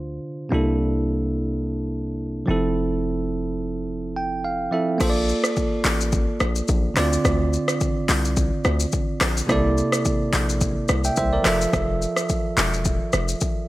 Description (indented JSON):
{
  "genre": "afrobeats",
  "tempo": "107 BPM",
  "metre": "4/4",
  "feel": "swing 55% on 16ths",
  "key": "unclear",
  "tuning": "A4 = 439 Hz",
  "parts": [
    { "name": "bell-like tine electric piano", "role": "accompaniment", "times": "0.0-13.7 s", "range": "C3 to G5", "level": "-23 LUFS", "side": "right 2 dB", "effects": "none" },
    { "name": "hard-hitting 808-style bass", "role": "bass", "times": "0.0-13.3 s", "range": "E1 to D2", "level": "-25 LUFS", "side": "left 1 dB", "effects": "none" },
    { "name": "afro-pop drum kit", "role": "drums", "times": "5.0-13.6 s", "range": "crash cymbal, handclaps, hi-hat, kick drum, rim click, shaker", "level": "-23 LUFS", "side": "left 1 dB", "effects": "overdrive" }
  ],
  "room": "digital ambience",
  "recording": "none",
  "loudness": "-20 LUFS",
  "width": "side -17 dB against mid",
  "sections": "0.0-5.0 A section; 5.0-13.7 B section",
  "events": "tine electric piano fill 3.9-5.0",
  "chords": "0.0 Dm7; 0.5 C13; 2.5 Fmaj7; 5.0 Bbmaj7; 7.0 Dm7; 9.5 C13; 11.5 Fmaj7"
}